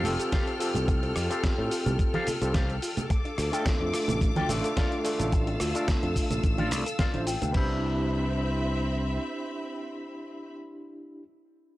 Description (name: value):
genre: nu-disco, nu disco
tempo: 108 BPM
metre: 4/4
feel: swing 53% on 16ths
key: C major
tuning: A4 = 440 Hz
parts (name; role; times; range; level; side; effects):
- overdriven tine electric piano; accompaniment; 0.0-11.2 s; A3 to B5; -32 LUFS; equal; medium tremolo, tape echo
- clear studio string section; sustained chords; 0.0-10.5 s; C4 to F6; -35 LUFS; left 1 dB; sidechain pumping
- soft round pluck; arpeggios; 0.0-7.8 s; A3 to A4; -39 LUFS; left 2 dB; none
- electric guitar with an envelope filter; riff; 0.0-11.2 s; F4 to G5; -36 LUFS; left 2 dB; analog chorus, tape echo
- modern bright fingered electric bass; bass; 0.0-9.2 s; F1 to A2; -30 LUFS; equal; tube saturation
- congas; percussion; 0.0-7.5 s; none; -33 LUFS; right 3 dB; none
- dusty soul sampler-style drum kit; drums; 0.1-7.7 s; cabasa, crash cymbal, hi-hat, rim click, snare drum; -35 LUFS; equal; studio reverb
- electronic kick drum; drums; 0.3-7.7 s; none; -27 LUFS; equal; studio reverb
room: little or no reverb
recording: dry, gritty hardware recording, cassette tape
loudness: -25 LUFS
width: side -16 dB against mid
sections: 0.0-7.5 A section; 7.5-9.8 B section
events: drop 0.0-7.5; clean electric guitar fill 6.4-7.5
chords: 0.0 Fadd9; 3.1 Dm; 7.5 Cmaj7